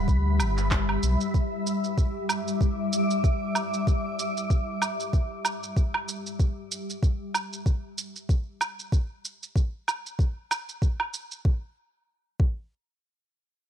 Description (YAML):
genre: organic downtempo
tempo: 95 BPM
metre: 4/4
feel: swing 57% on 16ths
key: E minor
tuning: A4 = 440 Hz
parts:
  - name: granular cloud pad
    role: sustained chords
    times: 0.0-6.4 s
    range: G3 to D6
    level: -29 LUFS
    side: left 1 dB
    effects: built-in reverb, sidechain pumping
  - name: warm sub bass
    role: bass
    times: 0.0-1.2 s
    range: G1 to D2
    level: -24 LUFS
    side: equal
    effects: sidechain pumping
  - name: electronic kick drum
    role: drums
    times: 0.1-12.6 s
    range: none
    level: -23 LUFS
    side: equal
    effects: none
  - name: electronic shaker, woodblock and handclaps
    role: drums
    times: 0.1-11.4 s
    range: none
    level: -30 LUFS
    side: right 3 dB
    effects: none
room: light reverb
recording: none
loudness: -25 LUFS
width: side -9 dB against mid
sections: 0.0-11.4 A section; 11.4-13.7 B section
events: none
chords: 0.0 G; 1.3 Em7; 6.4 N.C.